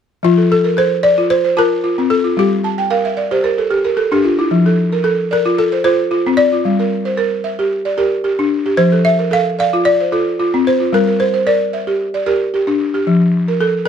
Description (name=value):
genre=west african traditional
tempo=112 BPM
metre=4/4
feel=swing 54% on 16ths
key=F major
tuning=A4 = 439 Hz
part: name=balafon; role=melody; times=0.2-13.9 s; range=F4 to F5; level=-15 LUFS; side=left 2 dB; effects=plate reverb
part: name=balafon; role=arpeggios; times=0.2-13.9 s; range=F3 to A5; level=-14 LUFS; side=equal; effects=none
room=light reverb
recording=none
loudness=-13 LUFS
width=side -8 dB against mid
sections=0.2-13.9 A section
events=balafon fill 2.6-4.5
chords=0.2 F; 2.4 Gm; 4.5 F; 6.6 Gm; 8.8 F; 10.9 Gm; 13.1 F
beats=| 0.22 0.76 1.29 1.82 | 2.36 2.89 3.43 3.96 | 4.50 5.03 5.57 6.11 | 6.64 7.18 7.71 8.25 | 8.78 9.32 9.86 10.39 | 10.93 11.46 12.00 12.54 | 13.07 13.61